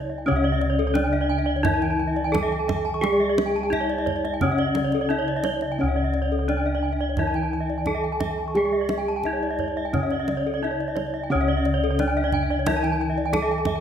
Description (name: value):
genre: Balinese gamelan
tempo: 87 BPM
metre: 4/4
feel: straight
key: C# pelog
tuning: A4 = 440 Hz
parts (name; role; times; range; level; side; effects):
- gamelan-type bronze metallophone; melody; 0.0-13.8 s; C#4 to A4-40c; -26 LUFS; left 1 dB; none
- gamelan-type bronze metallophone; accompaniment; 0.0-13.8 s; C#3 to G#3-45c; -32 LUFS; right 2 dB; none
- gamelan-type bronze metallophone; arpeggios; 0.0-13.8 s; A4-40c to C#6; -29 LUFS; left 4 dB; none
- gamelan-type bossed gongs; bass; 0.0-13.8 s; C#2 to G#4-45c; -28 LUFS; equal; none
- gamelan-type bronze metallophone; arpeggios; 0.1-13.7 s; C#5 to A5-40c; -29 LUFS; right 4 dB; none
- kendang; percussion; 0.6-13.8 s; none; -30 LUFS; right 3 dB; none
room: moderate recital hall reverb, RT60 1.4 s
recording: none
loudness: -21 LUFS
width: side -8 dB against mid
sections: 0.0-13.8 A section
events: none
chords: none